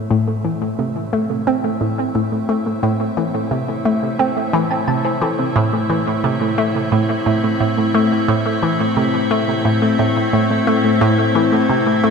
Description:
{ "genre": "ambient, sequencer-driven space music", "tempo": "88 BPM", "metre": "4/4", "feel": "straight", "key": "A minor", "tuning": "A4 = 438 Hz", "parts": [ { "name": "evolving wavetable pad", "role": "sustained chords", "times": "0.0-12.1 s", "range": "A2 to E5", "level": "-20 LUFS", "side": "left 2 dB", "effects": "chorus, built-in reverb" }, { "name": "hollow square pluck", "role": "riff", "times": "0.0-12.1 s", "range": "A2 to C4", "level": "-18 LUFS", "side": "equal", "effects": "chorus, phaser, tape echo" }, { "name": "thumb-piano-like synth pluck", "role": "arpeggios", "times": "0.1-12.1 s", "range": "A3 to A5", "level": "-22 LUFS", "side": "moving between left 3 dB and right 4 dB", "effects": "chorus, auto-pan, tape echo" } ], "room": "wet cathedral reverb, RT60 5.3 s", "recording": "in a vast, echoing space", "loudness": "-15 LUFS", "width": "side -5 dB against mid", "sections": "0.0-12.1 A section", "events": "fade-in on ambient pad 0.0-12.1", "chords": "0.0 Am" }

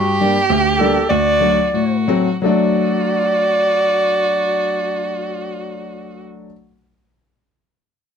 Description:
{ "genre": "klezmer", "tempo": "80-106 BPM", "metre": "2/4", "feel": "straight", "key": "D major", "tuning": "A4 = 440 Hz", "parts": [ { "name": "mellow clarinet", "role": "melody", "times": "0.0-6.2 s", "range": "F#4 to D5", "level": "-18 LUFS", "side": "equal", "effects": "none" }, { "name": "rich violin", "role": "second line", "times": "0.0-6.2 s", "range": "F#4 to G4", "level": "-22 LUFS", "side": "right 3 dB", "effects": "none" }, { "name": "warm upright piano", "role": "accompaniment", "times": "0.0-6.5 s", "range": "D2 to D4", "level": "-19 LUFS", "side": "left 2 dB", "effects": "none" } ], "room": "moderate studio reverb, RT60 0.5 s", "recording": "dark, warm production", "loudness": "-14 LUFS", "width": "side -7 dB against mid", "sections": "0.0-2.5 A section; 2.5-5.5 B section", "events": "slowing down 0.0-2.5", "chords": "0.0 Gm; 1.1 D" }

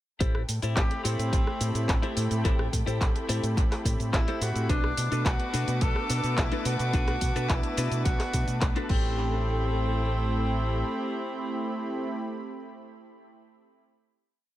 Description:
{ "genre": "nu-disco, nu disco", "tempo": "107 BPM", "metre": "4/4", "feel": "straight", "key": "A dorian", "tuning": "A4 = 443 Hz", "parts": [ { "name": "warm analog pad", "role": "accompaniment", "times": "0.2-12.2 s", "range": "A3 to B5", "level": "-34 LUFS", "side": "equal", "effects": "chorus, cassette tape, sidechain pumping, tape echo" }, { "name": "dark studio violin section", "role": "sustained chords", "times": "0.2-12.2 s", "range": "A4 to D6", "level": "-39 LUFS", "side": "left 2 dB", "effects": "sidechain pumping" }, { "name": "clean electric guitar", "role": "riff", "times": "0.2-12.4 s", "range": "D4 to C5", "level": "-36 LUFS", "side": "left 3 dB", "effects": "wide subtle chorus, tape echo" }, { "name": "fingered electric bass with an envelope filter", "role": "bass", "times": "0.2-10.8 s", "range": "A1 to B2", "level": "-29 LUFS", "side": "equal", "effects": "none" }, { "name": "electronic kick drum", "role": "drums", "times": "0.2-9.0 s", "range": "none", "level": "-27 LUFS", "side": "equal", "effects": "none" }, { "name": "house drum kit", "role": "drums", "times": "0.2-9.0 s", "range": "crash cymbal, handclaps, hi-hat, rim click, shaker", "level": "-34 LUFS", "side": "equal", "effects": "tape echo" }, { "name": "warm tenor saxophone", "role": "melody", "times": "0.8-12.2 s", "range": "C4 to A4", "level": "-34 LUFS", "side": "equal", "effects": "analog delay" } ], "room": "little or no reverb", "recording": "echo-heavy mix", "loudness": "-25 LUFS", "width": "side -14 dB against mid", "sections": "0.2-9.2 drop; 9.2-11.4 final hit", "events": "drop 0.2-9.2", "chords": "0.2 Am7; 4.7 Bm7; 8.9 Am7" }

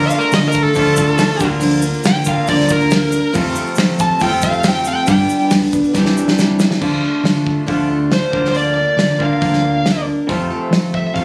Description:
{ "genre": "folk rock and heartland rock", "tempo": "139 BPM", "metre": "4/4", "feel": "straight", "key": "unclear", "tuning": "A4 = 438 Hz", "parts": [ { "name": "smooth overdriven lead guitar", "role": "melody", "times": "0.0-5.5, 8.1-11.2 s", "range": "A4 to A5", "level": "-20 LUFS", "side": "equal", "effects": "none" }, { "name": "picked steel-string acoustic guitar", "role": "accompaniment", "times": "0.0-11.2 s", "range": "G2 to B4", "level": "-22 LUFS", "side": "equal", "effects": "none" }, { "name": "electric guitar through a small old amp", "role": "riff", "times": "0.0-11.2 s", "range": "F2 to G4", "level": "-23 LUFS", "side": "equal", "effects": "none" }, { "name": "hollow-body short-scale fingered electric bass", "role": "bass", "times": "0.0-11.2 s", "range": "C2 to F3", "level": "-24 LUFS", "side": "equal", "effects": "none" }, { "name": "egg shaker", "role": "percussion", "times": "0.1-6.7 s", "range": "none", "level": "-32 LUFS", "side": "equal", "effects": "none" }, { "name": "natural country drum kit", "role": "drums", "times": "0.3-11.2 s", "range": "crash cymbal, hi-hat, kick drum, snare drum", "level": "-21 LUFS", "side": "equal", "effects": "none" } ], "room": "light reverb", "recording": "recorded on a phone in the room, studio ambience", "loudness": "-15 LUFS", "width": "mono", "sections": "0.0-6.8 A section; 6.8-11.2 B section", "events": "lead electric guitar solo 0.0-6.8; drum fill 5.9-6.8", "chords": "0.0 Dm; 1.4 Bb/D; 3.3 F; 5.1 G; 5.9 Cadd9; 6.8 Dm; 8.3 Bb/D; 10.3 F" }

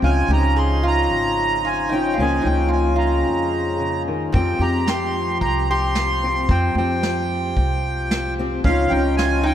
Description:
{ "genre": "acoustic folk duo or small band", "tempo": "111 BPM", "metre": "4/4", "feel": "straight", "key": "F minor", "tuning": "A4 = 440 Hz", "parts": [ { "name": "accordion", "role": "melody", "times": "0.0-9.5 s", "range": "F5 to C6", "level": "-23 LUFS", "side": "right 2 dB", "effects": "none" }, { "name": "metal-body resonator slide guitar", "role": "second line", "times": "0.0-9.5 s", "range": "C4 to Ab4", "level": "-26 LUFS", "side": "right 1 dB", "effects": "none" }, { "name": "fingerpicked steel-string acoustic guitar", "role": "accompaniment", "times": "0.0-9.5 s", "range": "F2 to Ab4", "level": "-24 LUFS", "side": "left 2 dB", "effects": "none" }, { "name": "hand-pumped harmonium", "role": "sustained chords", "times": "0.0-9.5 s", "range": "Db3 to C5", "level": "-30 LUFS", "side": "equal", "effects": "none" }, { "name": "upright bass", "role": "bass", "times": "0.0-9.5 s", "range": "Ab1 to F2", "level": "-22 LUFS", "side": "equal", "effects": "none" }, { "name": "soft brush drum kit", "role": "drums", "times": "4.3-9.3 s", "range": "kick drum, snare drum", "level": "-25 LUFS", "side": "equal", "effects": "none" } ], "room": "wet cathedral reverb, RT60 5.2 s", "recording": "in a vast, echoing space", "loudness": "-17 LUFS", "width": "side -10 dB against mid", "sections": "0.0-9.5 A section", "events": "none", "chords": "0.0 Dbadd9; 2.2 Bbm7/Db; 4.3 Fsus2; 8.6 Dbadd9" }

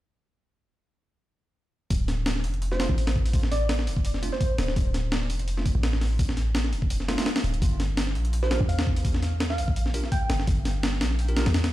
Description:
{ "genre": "drum and bass, jungle", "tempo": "168 BPM", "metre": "4/4", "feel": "swing 54% on 16ths", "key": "D minor", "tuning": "A4 = 440 Hz", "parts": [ { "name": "warm 808-style bass", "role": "bass", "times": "1.9-11.7 s", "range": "D1 to E2", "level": "-26 LUFS", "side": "equal", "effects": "tube saturation" }, { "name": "breakbeat sampler-style drum kit", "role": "drums", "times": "1.9-11.7 s", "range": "hi-hat, kick drum, snare drum", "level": "-26 LUFS", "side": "equal", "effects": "none" }, { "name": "soft struck synth lead", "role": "melody", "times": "2.7-4.8, 8.4-10.4 s", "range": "C5 to G5", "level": "-34 LUFS", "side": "right 1 dB", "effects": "chorus, phaser, tremolo, cassette tape, dub echo" }, { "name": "bell-like tine electric piano", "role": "stabs", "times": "2.7-11.4 s", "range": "A3 to Bb4", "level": "-37 LUFS", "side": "right 2 dB", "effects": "fast stereo tremolo, dub echo" } ], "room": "digital ambience", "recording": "played on a big sound system in a bare room, large studio reverb", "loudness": "-23 LUFS", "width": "side -15 dB against mid", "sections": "1.9-11.7 A section", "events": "none", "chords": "1.9 Dm; 7.6 Gm" }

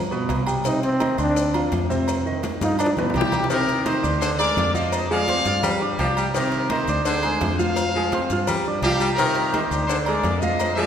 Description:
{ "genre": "latin, salsa", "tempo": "169 BPM", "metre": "4/4", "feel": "straight", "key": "C minor", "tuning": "A4 = 443 Hz", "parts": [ { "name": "warm baby grand piano", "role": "accompaniment", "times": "0.0-10.9 s", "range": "B2 to F6", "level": "-25 LUFS", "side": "right 1 dB", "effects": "none" }, { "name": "fingered electric bass", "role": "bass", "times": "0.0-10.9 s", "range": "C2 to G2", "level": "-27 LUFS", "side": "equal", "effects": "none" }, { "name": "congas", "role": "percussion", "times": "0.1-10.9 s", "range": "none", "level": "-33 LUFS", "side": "left 1 dB", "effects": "none" }, { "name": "maracas", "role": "percussion", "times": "0.1-10.9 s", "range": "none", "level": "-39 LUFS", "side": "left 6 dB", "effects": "none" }, { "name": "cowbell and bongos", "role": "percussion", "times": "0.3-10.8 s", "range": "none", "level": "-31 LUFS", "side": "left 3 dB", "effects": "none" }, { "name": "timbales and agogo bells", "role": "percussion", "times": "0.3-10.8 s", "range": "none", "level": "-31 LUFS", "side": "right 3 dB", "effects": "none" }, { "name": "clear trombone", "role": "melody", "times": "0.7-2.9 s", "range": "C4 to Eb4", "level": "-24 LUFS", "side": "equal", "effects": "none" }, { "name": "clear horn section", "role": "melody", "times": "3.2-10.9 s", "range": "D4 to F5", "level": "-24 LUFS", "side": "equal", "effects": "none" }, { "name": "bright baritone saxophone", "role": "second line", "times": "3.5-10.9 s", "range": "D3 to G3", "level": "-27 LUFS", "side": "left 2 dB", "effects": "none" } ], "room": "wet scoring stage reverb, RT60 2.1 s", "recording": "recorded in a church or concert hall", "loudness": "-19 LUFS", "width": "side -8 dB against mid", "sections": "0.0-3.5 A section; 3.5-10.9 B section", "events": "trombone solo 0.0-3.5; drum fill 2.6-3.5", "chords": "0.0 G; 0.7 Cmadd9; 1.4 Dm7; 2.1 F5; 2.8 G7; 3.5 Cm9; 4.2 Dm7b5; 4.9 Fm; 5.6 G5; 6.3 Cm9; 7.1 Dm7b5; 7.8 Fm; 8.5 G5; 9.2 Cm9; 9.9 Dm7b5" }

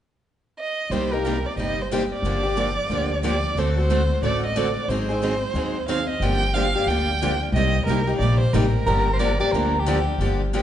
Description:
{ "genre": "acoustic string swing (jazz manouche)", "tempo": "181 BPM", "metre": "4/4", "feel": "swing 60% on 8ths", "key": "G minor", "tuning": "A4 = 440 Hz", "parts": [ { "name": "warm violin", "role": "melody", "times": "0.6-9.9 s", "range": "Bb4 to G5", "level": "-26 LUFS", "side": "right 3 dB", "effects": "none" }, { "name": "picked steel-string acoustic guitar", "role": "accompaniment", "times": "0.9-10.6 s", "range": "C3 to A4", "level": "-26 LUFS", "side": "left 4 dB", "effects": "none" }, { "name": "picked steel-string acoustic guitar", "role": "accompaniment", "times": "0.9-10.6 s", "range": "C3 to A4", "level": "-28 LUFS", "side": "right 4 dB", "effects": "none" }, { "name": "upright bass", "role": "bass", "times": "0.9-10.6 s", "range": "G1 to Eb2", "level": "-24 LUFS", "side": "equal", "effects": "none" }, { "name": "bright soprano saxophone", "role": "second line", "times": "8.9-10.5 s", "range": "G4 to D5", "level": "-24 LUFS", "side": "right 1 dB", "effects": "none" } ], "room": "wet recital hall reverb, RT60 1.8 s", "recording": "recorded in a church or concert hall, nothing above 10.9 kHz", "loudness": "-20 LUFS", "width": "side -10 dB against mid", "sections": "0.9-6.2 A section; 6.2-10.6 B section", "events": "none", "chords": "0.0 N.C.; 0.9 Cm7; 2.2 Gm7; 3.6 D7; 4.9 Ab7; 6.2 Gm7; 7.5 Cm7; 8.9 Gm7" }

